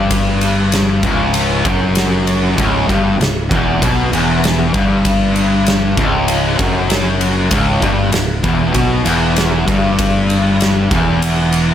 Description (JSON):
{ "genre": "stoner and doom metal", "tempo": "97 BPM", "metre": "4/4", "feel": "straight", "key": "unclear", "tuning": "A4 = 436 Hz", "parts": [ { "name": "fuzz guitar", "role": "riff", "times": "0.0-11.7 s", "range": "C#2 to B2", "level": "-14 LUFS", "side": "left 1 dB", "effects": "distortion" }, { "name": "growling picked electric bass", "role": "bass", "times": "0.0-11.7 s", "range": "C#1 to B1", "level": "-20 LUFS", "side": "right 1 dB", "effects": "overdrive" }, { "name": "oversized low-tuned drum kit", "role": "drums", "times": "0.1-11.7 s", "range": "kick drum, ride cymbal, snare drum", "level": "-18 LUFS", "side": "equal", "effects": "none" } ], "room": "studio reverb", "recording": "none", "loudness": "-12 LUFS", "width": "side -10 dB against mid", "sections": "0.0-11.7 A section", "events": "none", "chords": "0.0 C#m" }